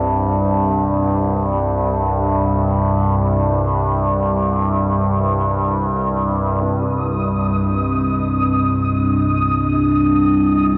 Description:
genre	dark ambient drone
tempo	free time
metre	none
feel	none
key	C minor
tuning	A4 = 440 Hz
part	dark detuned synth bell	arpeggios	0.0-6.7 s	none	barely audible	none	none
part	overtone-sweeping drone	drone	0.0-10.8 s	C2 to G2	-18 LUFS	equal	chorus, built-in reverb
part	flickering grainy texture	texture	7.0-10.8 s	Eb6	-25 LUFS	equal	built-in reverb
room	wet huge ambient reverb, RT60 7.7 s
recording	dark, warm production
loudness	-18 LUFS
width	mono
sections	0.0-6.6 A section; 6.6-10.8 B section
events	none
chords	0.0 C5; 6.6 Cm

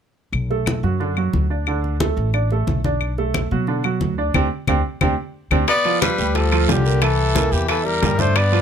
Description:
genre	Afro-Cuban jazz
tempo	179 BPM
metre	4/4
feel	straight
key	unclear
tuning	A4 = 440 Hz
part	upright bass	bass	0.3-8.6 s	A1 to B2	-21 LUFS	left 1 dB	none
part	claves	percussion	0.3-8.5 s	none	-27 LUFS	left 9 dB	none
part	congas	percussion	0.3-8.6 s	none	-25 LUFS	left 1 dB	none
part	clear baby grand piano	accompaniment	0.5-8.6 s	D3 to E5	-23 LUFS	right 6 dB	none
part	warm trumpet	melody	5.7-8.6 s	G4 to D5	-22 LUFS	equal	none
part	bright tenor saxophone	second line	5.7-8.6 s	D3 to B3	-23 LUFS	left 7 dB	none
part	bongos	percussion	5.7-8.5 s	none	-28 LUFS	left 10 dB	none
part	guiro	percussion	5.7-8.6 s	none	-31 LUFS	right 8 dB	none
part	timbales	percussion	5.7-8.6 s	none	-27 LUFS	right 6 dB	none
room	light reverb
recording	close, detailed microphones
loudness	-17 LUFS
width	side -8 dB against mid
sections	0.3-5.7 A section; 5.7-8.6 B section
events	band accent 4.3-5.7; drum fill 5.0-5.7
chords	0.3 Bm7; 1.7 D5; 3.0 Bm7; 4.3 D7sus4; 5.7 G9; 7.0 C9

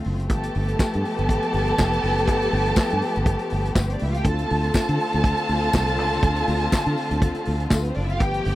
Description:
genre	disco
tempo	121 BPM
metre	4/4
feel	swing 56% on 16ths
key	D dorian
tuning	A4 = 439 Hz
part	warm studio string section	sustained chords	0.0-8.6 s	D3 to G4	-27 LUFS	left 2 dB	none
part	vintage drum kit	drums	0.0-8.6 s	handclaps, hi-hat, kick drum, snare drum	-20 LUFS	equal	none
part	fingered electric bass	bass	0.1-8.6 s	F1 to D3	-24 LUFS	equal	none
part	warm studio violin section	second line	0.3-8.6 s	A3 to A5	-25 LUFS	right 2 dB	none
part	tambourine	percussion	0.8-7.8 s	none	-36 LUFS	left 8 dB	none
room	little or no reverb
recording	dry, close 1970s-style studio recording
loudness	-20 LUFS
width	side -15 dB against mid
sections	0.0-8.6 A section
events	none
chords	0.3 G9; 4.3 Dm7

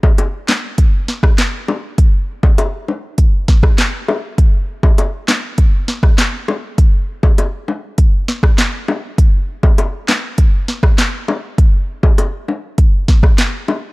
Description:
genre	dancehall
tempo	100 BPM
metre	4/4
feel	straight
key	none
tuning	none
part	afro-pop drum kit	drums	0.0-13.5 s	handclaps, hi-hat, kick drum, rim click, snare drum	-12 LUFS	equal	none
part	bongos	percussion	0.0-13.8 s	none	-21 LUFS	left 3 dB	none
room	little or no reverb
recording	dark, warm production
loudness	-12 LUFS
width	side -23 dB against mid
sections	0.0-13.9 A section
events	none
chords	none

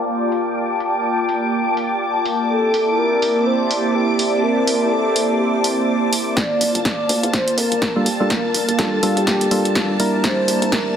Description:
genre	deep house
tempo	124 BPM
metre	4/4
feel	swing 58% on 16ths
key	G dorian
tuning	A4 = 440 Hz
part	warm analog pad	sustained chords	0.0-11.0 s	Bb3 to A5	-23 LUFS	right 1 dB	chorus, sidechain pumping
part	airy breathy pad	texture	0.0-11.0 s	Bb3 to A5	-22 LUFS	equal	chorus, phaser, sidechain pumping
part	string machine, violins	texture	0.0-11.0 s	A5 to D6	-28 LUFS	left 1 dB	ensemble chorus
part	punchy analog drum machine	drums	0.3-10.8 s	hi-hat, snare drum	-22 LUFS	equal	low-pass filter on hats, low-pass filter on snare
part	mellow horn-like synth lead	melody	2.5-11.0 s	G4 to D5	-21 LUFS	equal	chorus, cassette tape, digital delay
part	hollow knocking FM bass	bass	6.4-10.9 s	F1 to F2	-30 LUFS	equal	sidechain pumping, high-pass filter
part	electronic kick drum	drums	6.4-10.8 s	none	-25 LUFS	equal	high-pass filter on kick
part	percussive organ stab	stabs	8.0-11.0 s	G3 to Bb4	-19 LUFS	equal	chorus, sidechain pumping, ping-pong delay
room	moderate lush hall reverb, RT60 2.1 s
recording	heavily compressed radio sound, low-pass filter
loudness	-16 LUFS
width	side -8 dB against mid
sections	0.0-6.4 A section; 6.4-11.0 B section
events	filter sweep on drum 0.0-6.4; filter sweep on analog synth pad 0.0-6.4; filter sweep 0.0-6.4; build-up 6.4-11.0; drum fill 6.4-11.0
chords	0.0 Gm9; 2.5 C13; 6.4 Gm9; 10.2 C13

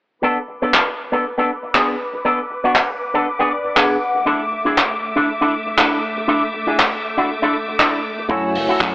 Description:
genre	nu-disco, nu disco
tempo	119 BPM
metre	4/4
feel	swing 55% on 16ths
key	B dorian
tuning	A4 = 440 Hz
part	bright studio string section	sustained chords	0.2-8.9 s	A3 to E6	-24 LUFS	equal	sidechain pumping, low-pass filter
part	electric guitar with an envelope filter	riff	0.2-8.8 s	B3 to F#5	-18 LUFS	equal	analog chorus, low-pass filter
part	damped 70s drum kit	drums	0.7-8.9 s	handclaps, hi-hat	-17 LUFS	equal	none
part	barky reed electric piano	accompaniment	8.3-8.9 s	A3 to G#5	-19 LUFS	equal	fast tremolo, sidechain pumping
part	fingered electric bass with an envelope filter	bass	8.3-8.9 s	F#1 to F#2	-29 LUFS	equal	none
part	kick drum	drums	8.3-8.9 s	none	-33 LUFS	equal	none
room	light reverb, studio ambience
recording	AM radio sound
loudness	-16 LUFS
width	side -20 dB against mid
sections	0.2-8.9 A section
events	filter sweep on string section 0.2-8.9; clean electric guitar fill 3.3-4.3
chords	0.2 Bm7; 4.3 E7sus4; 8.3 F#m7

